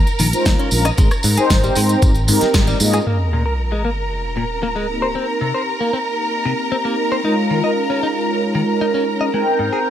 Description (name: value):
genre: nu-disco, nu disco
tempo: 115 BPM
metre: 4/4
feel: straight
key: Bb dorian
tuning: A4 = 440 Hz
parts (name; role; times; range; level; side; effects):
- rich studio string section; sustained chords; 0.0-9.9 s; Bb4 to Bb5; -23 LUFS; equal; sidechain pumping
- fingered electric bass; bass; 0.0-3.0 s; Ab1 to Ab2; -18 LUFS; equal; none
- pop drum kit; drums; 0.1-3.0 s; hi-hat, rim click, snare drum; -22 LUFS; equal; low-pass filter on hats, low-pass filter on snare
- tambourine; percussion; 0.1-3.0 s; none; -26 LUFS; right 2 dB; none
- direct-recorded clean electric guitar; riff; 0.2-9.8 s; Ab2 to Eb5; -23 LUFS; left 2 dB; wide subtle chorus, low-pass filter
- mellow synth brass; accompaniment; 0.3-9.9 s; Ab3 to G5; -20 LUFS; equal; chorus, sidechain pumping, tape echo
- electronic kick drum; drums; 0.5-2.7 s; none; -16 LUFS; equal; overdrive
- sub drop; sound effects; 3.1-5.2 s; none; -22 LUFS; equal; none
room: light reverb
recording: none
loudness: -15 LUFS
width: side -10 dB against mid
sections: 0.0-3.1 A section; 3.1-9.9 B section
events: band accent 2.5; impact 3.1-5.2; filter sweep on clean electric guitar 3.1-9.9; filter sweep on analog polysynth 3.1-9.9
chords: 0.0 Eb7sus4; 1.0 Abmaj7; 3.1 Bbm7; 4.9 Cm7; 7.2 Eb7sus4; 9.3 Abmaj7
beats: 0.46 | 0.98 1.50 2.02 2.55 | 3.07 3.59 4.11 4.63 | 5.16 5.68 6.20 6.72 | 7.24 7.76 8.29 8.81 | 9.33 9.85